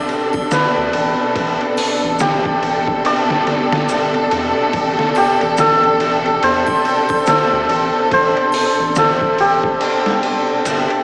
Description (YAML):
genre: trip hop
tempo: 71 BPM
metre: 4/4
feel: swing 60% on 16ths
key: A minor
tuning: A4 = 443 Hz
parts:
  - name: santur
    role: melody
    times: 0.0-11.0 s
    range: G4 to D5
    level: -19 LUFS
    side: equal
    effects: vintage 12-bit sampler grit, dub echo
  - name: dark studio string section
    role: sustained chords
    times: 0.0-11.0 s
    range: B2 to A4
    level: -21 LUFS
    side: equal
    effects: none
  - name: trip hop sampler-style drum kit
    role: drums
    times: 0.1-11.0 s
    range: hi-hat, kick drum, ride cymbal, snare drum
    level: -24 LUFS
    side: equal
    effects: overdrive, vintage 12-bit sampler grit
  - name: triangle and tube shaker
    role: percussion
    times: 0.3-10.9 s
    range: none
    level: -39 LUFS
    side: equal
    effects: none
  - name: round analog bass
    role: bass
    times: 0.8-10.9 s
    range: G1 to E2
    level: -32 LUFS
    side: equal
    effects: none
room: wet church reverb, RT60 3.5 s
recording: dreamy mix soaked in reverb, vinyl crackle, small speaker sound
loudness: -16 LUFS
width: mono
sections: 0.0-11.0 A section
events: break 9.8-11.0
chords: 0.0 Am11